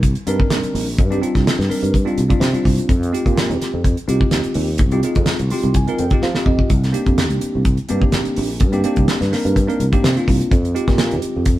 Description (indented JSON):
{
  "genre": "electric jazz fusion",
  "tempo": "126 BPM",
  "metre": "4/4",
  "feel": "swing 53% on 16ths",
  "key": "C minor",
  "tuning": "A4 = 439 Hz",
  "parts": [
    { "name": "sustaining fretless electric bass", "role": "bass", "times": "0.0-11.6 s", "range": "Bb1 to F3", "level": "-20 LUFS", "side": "equal", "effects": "none" },
    { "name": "damped 70s drum kit", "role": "drums", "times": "0.0-11.6 s", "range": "hi-hat, kick drum, snare drum", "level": "-18 LUFS", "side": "equal", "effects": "none" },
    { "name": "bell-like tine electric piano", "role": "accompaniment", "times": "0.3-11.4 s", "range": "G3 to C6", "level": "-21 LUFS", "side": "right 1 dB", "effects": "medium stereo tremolo" }
  ],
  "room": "light reverb",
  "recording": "band playing live in one room",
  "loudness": "-15 LUFS",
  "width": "side -15 dB against mid",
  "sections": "0.0-11.6 A section",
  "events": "tine electric piano fill 2.2-2.9, 5.3-6.7; drum fill 6.2-6.7",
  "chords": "0.0 Cm9; 2.9 Fm9; 6.7 Cm9; 10.5 Fm9",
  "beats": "0.02 0.50 | 0.98 1.46 1.93 2.41 | 2.89 3.36 3.84 4.32 | 4.79 5.27 5.75 6.22 | 6.70 7.18 7.65 8.13 | 8.61 9.08 9.56 10.04 | 10.51 10.99 11.46"
}